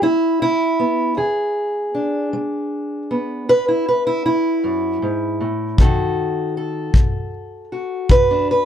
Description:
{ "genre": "acoustic country blues, solo or duo", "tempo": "52 BPM (dotted quarters)", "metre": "12/8", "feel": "straight", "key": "E mixolydian", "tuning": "A4 = 438 Hz", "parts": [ { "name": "fingerpicked steel-string acoustic guitar", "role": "melody", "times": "0.0-8.7 s", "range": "E2 to B4", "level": "-18 LUFS", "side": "equal", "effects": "none" }, { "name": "kick drum", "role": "drums", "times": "5.8-8.3 s", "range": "none", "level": "-16 LUFS", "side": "left 1 dB", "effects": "none" } ], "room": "moderate booth ambience, RT60 0.3 s", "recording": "dark, warm production", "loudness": "-17 LUFS", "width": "side -9 dB against mid", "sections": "0.0-8.7 A section", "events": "none", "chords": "0.0 E7; 5.8 B7" }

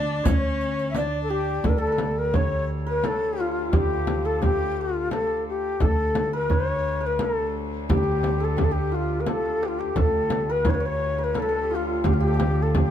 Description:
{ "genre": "Persian modal ensemble", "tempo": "86 BPM", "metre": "3/4", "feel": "straight", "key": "D avaz esfahan", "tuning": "A4 = 440 Hz", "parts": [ { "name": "breathy reedy ney", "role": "melody", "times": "0.0-12.9 s", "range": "F4 to E5", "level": "-26 LUFS", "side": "left 3 dB", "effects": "plate reverb" }, { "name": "clear cello", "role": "second line", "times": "0.0-1.7 s", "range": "C#4-20c to D4", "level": "-31 LUFS", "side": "left 3 dB", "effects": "none" }, { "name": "santur", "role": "second line", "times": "0.0-12.9 s", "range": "F4 to D5", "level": "-31 LUFS", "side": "right 2 dB", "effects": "none" }, { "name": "upright bass", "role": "bass", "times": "0.0-12.9 s", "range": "D2", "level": "-26 LUFS", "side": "right 1 dB", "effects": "none" }, { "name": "frame drum", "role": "percussion", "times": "0.3-12.9 s", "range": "none", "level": "-28 LUFS", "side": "left 2 dB", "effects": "none" }, { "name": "riq", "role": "percussion", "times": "0.3-1.1 s", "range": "none", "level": "-36 LUFS", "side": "right 5 dB", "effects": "none" }, { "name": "tombak", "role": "percussion", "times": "0.3-12.9 s", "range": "none", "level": "-27 LUFS", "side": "right 3 dB", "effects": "none" }, { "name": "clear chamber cello section", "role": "drone", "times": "1.7-12.9 s", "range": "D2", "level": "-34 LUFS", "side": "left 2 dB", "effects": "none" } ], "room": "light reverb", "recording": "none", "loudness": "-21 LUFS", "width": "side -10 dB against mid", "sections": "0.0-1.6 A section; 1.6-12.9 B section", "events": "drum fill 9.3-10.0", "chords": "none" }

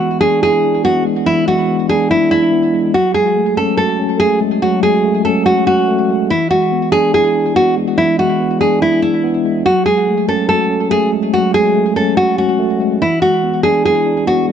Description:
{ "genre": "hip hop", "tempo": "143 BPM", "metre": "4/4", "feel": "half-time", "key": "F# minor", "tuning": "A4 = 440 Hz", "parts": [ { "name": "nylon-string guitar", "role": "melody", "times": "0.0-14.5 s", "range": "E4 to A4", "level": "-13 LUFS", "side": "right 1 dB", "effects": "low-pass filter, tape echo" }, { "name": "mellow tine electric piano", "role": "accompaniment", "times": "0.0-14.5 s", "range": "E3 to F#4", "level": "-16 LUFS", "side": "left 2 dB", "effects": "medium stereo tremolo, low-pass filter" } ], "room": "light reverb, studio reverb", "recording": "echo-heavy mix", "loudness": "-12 LUFS", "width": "side -8 dB against mid", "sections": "0.0-2.9 A section; 2.9-14.5 A section", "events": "none", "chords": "0.0 E7; 2.9 F#madd9; 6.3 E7; 9.7 F#madd9; 13.0 E7" }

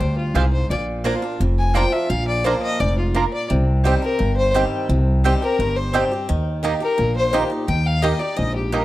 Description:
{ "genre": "bluegrass", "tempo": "172 BPM", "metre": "4/4", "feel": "straight", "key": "C minor", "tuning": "A4 = 440 Hz", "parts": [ { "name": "rich fiddle", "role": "melody", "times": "0.0-8.8 s", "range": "F4 to Ab5", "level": "-24 LUFS", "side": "left 3 dB", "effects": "none" }, { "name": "picked swing-style acoustic guitar", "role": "accompaniment", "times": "0.0-8.8 s", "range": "F2 to G4", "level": "-24 LUFS", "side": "equal", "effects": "none" }, { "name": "upright bass", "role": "bass", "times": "0.0-8.8 s", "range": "F1 to Eb2", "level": "-20 LUFS", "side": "equal", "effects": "none" }, { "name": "mandolin", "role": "stabs", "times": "0.3-8.8 s", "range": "Ab3 to Bb5", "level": "-25 LUFS", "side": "right 6 dB", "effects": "none" }, { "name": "bluegrass banjo", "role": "melody", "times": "0.4-8.8 s", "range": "C4 to Bb4", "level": "-29 LUFS", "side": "right 2 dB", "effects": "none" }, { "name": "clear fiddle", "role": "second line", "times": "2.8-8.8 s", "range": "F4 to G5", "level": "-28 LUFS", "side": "left 3 dB", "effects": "none" } ], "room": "studio ambience", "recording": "dry, close 1970s-style studio recording", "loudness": "-17 LUFS", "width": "side -16 dB against mid", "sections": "0.0-8.8 A section", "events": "none", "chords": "0.0 Fmadd9; 0.7 Bb; 3.5 Cm; 6.3 Eb" }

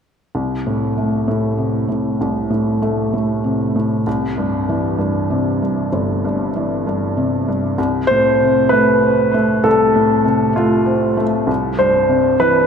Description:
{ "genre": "pop", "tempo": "65 BPM (dotted quarters)", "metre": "6/8", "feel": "straight", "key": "unclear", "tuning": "A4 = 440 Hz", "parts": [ { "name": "felt-muted upright piano", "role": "accompaniment", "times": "0.3-12.7 s", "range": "G1 to C4", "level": "-16 LUFS", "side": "equal", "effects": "none" }, { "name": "clear grand piano", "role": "melody", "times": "8.1-12.7 s", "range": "F4 to C5", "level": "-14 LUFS", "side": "equal", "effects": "ping-pong delay" } ], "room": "wet plate reverb, RT60 3.6 s", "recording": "dreamy mix soaked in reverb", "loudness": "-14 LUFS", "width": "side -6 dB against mid", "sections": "0.4-7.8 A section; 7.8-12.7 B section", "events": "none", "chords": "0.4 Am/C; 4.1 C; 7.8 F/C (rootless); 11.5 C" }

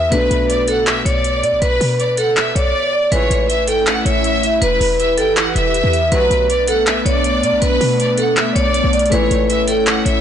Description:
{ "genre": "hip hop, trap", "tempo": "160 BPM", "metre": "4/4", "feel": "half-time", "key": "unclear", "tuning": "A4 = 439 Hz", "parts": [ { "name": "vibraphone with hard mallets", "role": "melody", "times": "0.0-10.2 s", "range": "A4 to E5", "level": "-17 LUFS", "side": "right 1 dB", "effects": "low-pass filter, ping-pong delay" }, { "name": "bright studio violin section", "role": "second line", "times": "0.0-10.2 s", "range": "B4 to G5", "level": "-21 LUFS", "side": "equal", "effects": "none" }, { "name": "dark concert grand piano", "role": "accompaniment", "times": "0.0-3.1, 9.1-10.2 s", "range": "B2 to C#5", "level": "-24 LUFS", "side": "left 5 dB", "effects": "low-pass filter" }, { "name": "short 808-style bass", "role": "bass", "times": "0.0-10.2 s", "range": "E1 to B2", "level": "-20 LUFS", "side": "equal", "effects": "none" }, { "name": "trap drum kit", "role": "drums", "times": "0.1-10.1 s", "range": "handclaps, hi-hat", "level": "-21 LUFS", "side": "equal", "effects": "overdrive" }, { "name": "airy breathy pad", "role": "sustained chords", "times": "3.4-10.2 s", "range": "E3 to B4", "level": "-22 LUFS", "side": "left 2 dB", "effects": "chorus" }, { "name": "dark brass ensemble", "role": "stabs", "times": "3.1-3.5, 6.1-6.5, 9.1-9.5 s", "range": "C#2 to F#3", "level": "-28 LUFS", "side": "right 1 dB", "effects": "ping-pong delay" } ], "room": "light reverb, small room reverb", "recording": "blown-out, overdriven recording, overdrive, nothing above 10.6 kHz", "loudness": "-13 LUFS", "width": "side -9 dB against mid", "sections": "0.0-3.1 A section; 3.1-10.2 B section", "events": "drums muted 2.7-3.1", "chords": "0.1 Bm7; 3.1 A; 4.6 Em; 6.1 Bm7; 9.1 A" }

